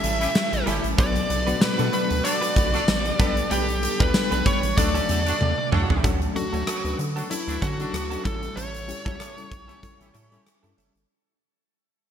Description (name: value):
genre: 1980s-style pop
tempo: 95 BPM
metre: 4/4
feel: swing 55% on 16ths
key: D major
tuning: A4 = 444 Hz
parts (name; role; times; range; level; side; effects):
- fuzz lead guitar; melody; 0.0-10.4 s; E4 to E5; -28 LUFS; equal; distortion, shimmer reverb
- shimmering bell with halo; second line; 0.0-5.7 s; G5 to E6; -35 LUFS; equal; ensemble chorus, shimmer reverb, ping-pong delay
- FM electric piano with tremolo; accompaniment; 0.0-11.1 s; F#3 to B4; -31 LUFS; left 6 dB; shimmer reverb
- crunchy overdriven guitar; accompaniment; 0.0-6.5 s; B2 to G4; -36 LUFS; right 5 dB; none
- direct-recorded clean electric guitar; riff; 0.0-11.0 s; G3 to B4; -34 LUFS; right 6 dB; analog chorus, shimmer reverb
- rubbery square bass; bass; 0.0-11.1 s; F#1 to D3; -28 LUFS; equal; none
- huge arena drum kit; drums; 0.0-11.1 s; hi-hat, kick drum, rim click, snare drum, tambourine, toms; -25 LUFS; equal; gated reverb
- warm horn section; stabs; 0.2-10.8 s; B3 to A4; -34 LUFS; right 1 dB; shimmer reverb
room: moderate lush hall reverb, RT60 1.7 s, studio reverb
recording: bright 1980s-style digital production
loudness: -21 LUFS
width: side -9 dB against mid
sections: 0.0-6.0 A section; 6.0-11.1 B section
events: drum fill 5.4-6.0; fade-out 6.0-11.1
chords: 0.0 A7; 1.0 Bm7; 3.2 Gadd9/B; 4.8 Dmaj7; 8.2 A7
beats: 0.35 | 0.98 1.62 2.25 2.88 | 3.51 4.14 4.78 5.41 | 6.04 6.67 7.30 7.93 | 8.56 9.20 9.83 10.46